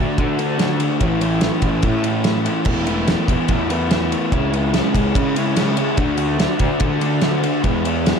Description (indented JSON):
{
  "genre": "indie rock",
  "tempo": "145 BPM",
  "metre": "4/4",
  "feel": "straight",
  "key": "A major",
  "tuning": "A4 = 440 Hz",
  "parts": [
    { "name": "crunchy overdriven guitar", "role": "riff", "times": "0.0-8.2 s", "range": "A2 to F#4", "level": "-19 LUFS", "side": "left 1 dB", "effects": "none" },
    { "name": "fuzz picked electric bass", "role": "bass", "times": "0.0-8.1 s", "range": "E1 to D3", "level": "-23 LUFS", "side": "equal", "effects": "overdrive" },
    { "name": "loose indie drum kit", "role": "drums", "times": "0.2-8.2 s", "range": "crash cymbal, kick drum, ride cymbal, snare drum", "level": "-21 LUFS", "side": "equal", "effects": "none" }
  ],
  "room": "light reverb",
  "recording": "dark, warm production",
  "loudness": "-16 LUFS",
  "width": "side -6 dB against mid",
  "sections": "0.0-8.2 A section",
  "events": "none",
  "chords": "0.0 D; 1.0 A; 2.7 Esus4; 4.3 C#m; 6.0 D; 7.6 E",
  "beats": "0.19 0.60 | 1.01 1.43 1.84 2.25 | 2.67 3.08 3.49 3.91 | 4.32 4.74 5.15 5.57 | 5.98 6.39 6.81 7.22 | 7.64 8.05"
}